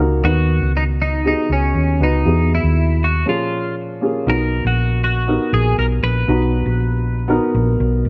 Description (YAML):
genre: piano-driven pop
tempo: 119 BPM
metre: 4/4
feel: straight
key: unclear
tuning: A4 = 439 Hz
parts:
  - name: dark upright piano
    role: accompaniment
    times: 0.0-8.1 s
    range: Bb2 to A#5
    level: -23 LUFS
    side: equal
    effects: none
  - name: hollow-body short-scale fingered electric bass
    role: bass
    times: 0.0-8.1 s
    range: Ab1 to E2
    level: -19 LUFS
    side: equal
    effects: none
  - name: twelve-string electric guitar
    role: melody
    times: 0.2-7.5 s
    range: Db4 to B4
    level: -24 LUFS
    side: equal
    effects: subtle chorus
room: light reverb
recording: none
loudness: -18 LUFS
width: mono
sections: 0.0-4.3 A section; 4.3-8.1 B section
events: break 3.3-4.3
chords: 0.2 B; 2.3 Eadd9; 3.3 Bbm7; 4.3 Bmaj7